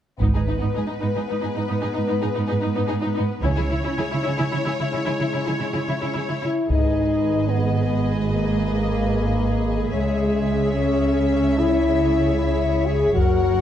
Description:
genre	cinematic, epic orchestral film score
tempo	74 BPM (dotted quarters)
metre	12/8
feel	straight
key	G# minor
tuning	A4 = 440 Hz
part	rich symphonic violin section	melody	0.2-13.6 s	B4 to F#5	-30 LUFS	left 4 dB	none
part	warm symphonic violin section	second line	0.2-13.6 s	B3 to C#5	-32 LUFS	left 4 dB	none
part	rich symphonic viola section	accompaniment	0.2-13.6 s	D#4 to A#4	-30 LUFS	equal	none
part	clear French horn section	sustained chords	0.2-13.6 s	G#3 to G#4	-24 LUFS	left 3 dB	none
part	rich symphonic double bass section	bass	0.2-13.6 s	F#1 to C#2	-24 LUFS	right 3 dB	none
part	warm symphonic cello section	bass	0.2-13.6 s	F#2 to C#3	-26 LUFS	right 3 dB	none
part	taiko ensemble	drums	0.2-1.3, 6.7-7.7, 13.2-13.6 s	none	-23 LUFS	equal	none
room	moderate scoring stage reverb, RT60 1.6 s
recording	dark, warm production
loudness	-19 LUFS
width	side -10 dB against mid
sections	0.2-6.7 A section; 6.7-13.6 B section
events	none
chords	0.2 G#m; 3.4 C#m; 6.7 G#m; 9.9 C#m

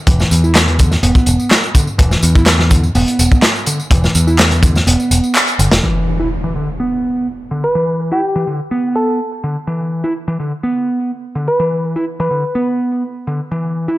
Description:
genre	breakbeat, breaks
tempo	125 BPM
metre	4/4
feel	straight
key	E minor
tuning	A4 = 439 Hz
part	growling picked electric bass	riff	0.1-14.0 s	D3 to E4	-18 LUFS	right 1 dB	overdrive, vintage 12-bit sampler grit, low-pass filter, tape echo
part	picked electric bass	bass	0.1-5.8 s	E1 to E2	-13 LUFS	equal	none
part	crunchy breakbeat drum kit	drums	0.1-5.8 s	hi-hat, kick drum, snare drum	-13 LUFS	equal	none
part	electronic tambourine and handclaps	drums	0.1-5.8 s	none	-18 LUFS	equal	overdrive
part	impact	sound effects	5.8-7.8 s	none	-22 LUFS	equal	none
part	soft struck synth lead	melody	7.6-12.7 s	G4 to B4	-18 LUFS	equal	chorus, old record sound, tape echo
room	small room ambience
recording	none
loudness	-12 LUFS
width	side -17 dB against mid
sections	0.0-5.8 A section; 5.8-14.0 B section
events	kick drops out 4.9-5.8; band accent 5.4; impact 5.8-7.8; filter sweep on picked electric bass 5.8-14.0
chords	0.0 E5

